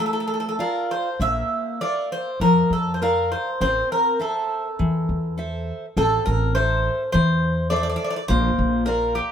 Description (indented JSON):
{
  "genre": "greek folk, Greek bouzouki band",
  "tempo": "102 BPM",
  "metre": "4/4",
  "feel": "straight",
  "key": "A phrygian",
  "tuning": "A4 = 440 Hz",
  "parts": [
    { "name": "Greek bouzouki", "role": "melody", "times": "0.0-9.3 s", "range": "G4 to E5", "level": "-22 LUFS", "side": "equal", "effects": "none" },
    { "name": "picked steel-string acoustic guitar", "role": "accompaniment", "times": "0.0-9.3 s", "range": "E3 to F5", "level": "-25 LUFS", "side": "left 1 dB", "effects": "none" },
    { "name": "upright bass", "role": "bass", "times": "1.2-9.2 s", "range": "A1 to F2", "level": "-25 LUFS", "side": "equal", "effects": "none" }
  ],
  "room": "light reverb",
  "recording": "minimal, uncompressed stereo recording",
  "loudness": "-20 LUFS",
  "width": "side -8 dB against mid",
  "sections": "0.0-6.0 A section; 6.0-9.3 B section",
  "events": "speeding up 0.0-9.3",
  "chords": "0.0 Dm; 1.2 Bb; 3.6 Am; 8.3 Bb"
}